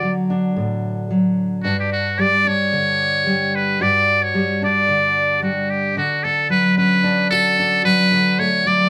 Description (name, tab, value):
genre	highlife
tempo	111 BPM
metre	4/4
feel	straight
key	D major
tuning	A4 = 440 Hz
part	trumpet with metal mute	melody	0.0-8.9 s	F#4 to D5	-19 LUFS	equal	none
part	fingerpicked steel-string acoustic guitar	accompaniment	0.0-8.9 s	G2 to F#4	-22 LUFS	equal	none
room	wet studio reverb, RT60 0.7 s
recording	band playing live in one room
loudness	-18 LUFS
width	mono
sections	0.0-6.0 A section; 6.0-8.9 B section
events	none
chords	0.0 D; 1.6 G5; 6.0 Dmaj7